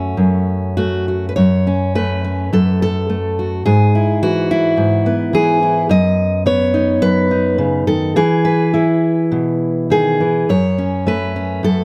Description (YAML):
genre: folk, solo fingerstyle acoustic guitar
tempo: 104 BPM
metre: 4/4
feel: rubato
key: F# dorian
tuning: A4 = 440 Hz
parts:
  - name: fingerpicked steel-string acoustic guitar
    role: solo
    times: 0.0-11.8 s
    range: F#2 to D#5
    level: -16 LUFS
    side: equal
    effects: none
room: moderate large studio reverb, RT60 1.2 s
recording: close, detailed microphones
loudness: -16 LUFS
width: mono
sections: 0.0-1.4 A section; 1.4-11.8 B section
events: none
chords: 0.0 F#m; 3.7 E/G#; 5.9 B/F#; 8.2 E; 10.5 F#m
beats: 0.17 0.77 | 1.37 1.95 2.52 3.09 | 3.65 4.21 4.77 5.33 | 5.89 6.45 7.01 7.58 | 8.16 8.73 9.31 9.90 | 10.48 11.06 11.64